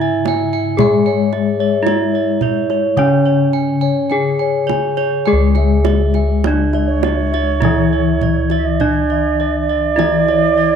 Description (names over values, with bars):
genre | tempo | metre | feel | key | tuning
Javanese gamelan | 51-58 BPM | 4/4 | straight | unclear | A4 = 444 Hz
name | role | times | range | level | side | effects
gamelan-type bronze metallophone | melody | 0.0-10.8 s | C#4 to G#4-30c | -19 LUFS | right 2 dB | none
gamelan-type bronze metallophone | accompaniment | 0.0-10.8 s | C#3 to G#3-30c | -20 LUFS | left 10 dB | none
gamelan-type bossed gongs | arpeggios | 0.0-10.6 s | C#5 to G#5-30c | -22 LUFS | left 9 dB | none
gamelan-type bronze metallophone | arpeggios | 0.0-10.8 s | C#5 to G#5-30c | -23 LUFS | right 8 dB | none
gamelan-type bossed gongs | bass | 0.0-10.8 s | C#2 to G#4-30c | -19 LUFS | equal | none
kendang | percussion | 0.3-10.4 s | none | -23 LUFS | right 9 dB | none
mellow hollow bansuri | second line | 6.9-10.8 s | C#5 to E5-28c | -18 LUFS | right 7 dB | none
room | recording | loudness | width
wet spring reverb, RT60 2.0 s | 1960s-style stereo with parts hard left and right | -13 LUFS | side -7 dB against mid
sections
0.0-5.3 A section; 5.3-10.8 B section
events
none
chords
none